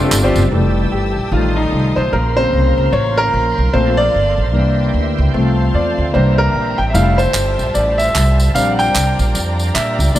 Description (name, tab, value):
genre	uptempo gospel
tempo	150 BPM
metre	4/4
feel	swing 60% on 8ths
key	F major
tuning	A4 = 440 Hz
part	mellow horn section	melody	0.0-0.5 s	A3 to F4	-26 LUFS	left 2 dB	none
part	clear concert grand piano	accompaniment	0.0-10.2 s	Db3 to G5	-16 LUFS	left 1 dB	none
part	bright tonewheel organ	sustained chords	0.0-10.2 s	Db3 to G5	-25 LUFS	right 4 dB	slow rotary speaker, overdrive, chorus vibrato
part	upright bass	bass	0.0-10.2 s	F1 to Bb2	-16 LUFS	equal	none
part	handclaps and tambourine	percussion	0.1-0.4, 6.9-10.2 s	none	-22 LUFS	right 2 dB	none
part	dark studio string section	sustained chords	0.5-10.2 s	C5 to E6	-28 LUFS	left 2 dB	none
room	light reverb, small room ambience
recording	none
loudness	-12 LUFS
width	side -13 dB against mid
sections	0.5-10.2 A section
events	grand piano solo 0.5-10.2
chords	0.0 F69; 0.5 Fmaj9; 1.3 F7/A; 2.1 Bbmadd9; 3.7 Gm11/Bb; 4.5 C7; 5.3 F/C; 6.1 C7; 6.9 Fmaj9; 8.5 Bb6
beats	0.12 | 0.52 0.92 1.32 1.72 | 2.12 2.53 2.93 3.33 | 3.73 4.13 4.53 4.94 | 5.34 5.74 6.14 6.54 | 6.94 7.34 7.75 8.15 | 8.55 8.95 9.35 9.75 | 10.15